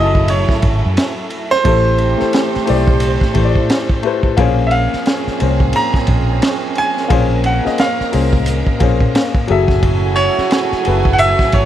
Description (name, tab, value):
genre	R&B, neo-soul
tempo	88 BPM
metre	4/4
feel	swing 58% on 16ths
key	unclear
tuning	A4 = 445 Hz
part	clear grand piano	melody	0.0-11.7 s	C5 to Bb5	-18 LUFS	right 2 dB	none
part	dark upright piano	accompaniment	0.0-11.7 s	Gb3 to A5	-19 LUFS	left 8 dB	none
part	warm studio string section	sustained chords	0.0-11.7 s	Gb3 to Ab5	-26 LUFS	right 3 dB	none
part	warm trombone section	stabs	0.0-11.7 s	Db3 to G4	-23 LUFS	right 12 dB	none
part	vintage muted fingered electric bass	bass	0.0-11.7 s	Gb1 to Bb2	-16 LUFS	equal	none
part	crunchy breakbeat drum kit	drums	0.1-11.7 s	hi-hat, kick drum, ride cymbal, snare drum	-18 LUFS	equal	none
room	small room reverb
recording	none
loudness	-12 LUFS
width	side -11 dB against mid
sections	0.0-11.7 A section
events	upright piano fill 8.5-9.8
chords	0.0 Gbm9; 1.6 Am9; 4.4 Bbm9; 9.5 Gbm9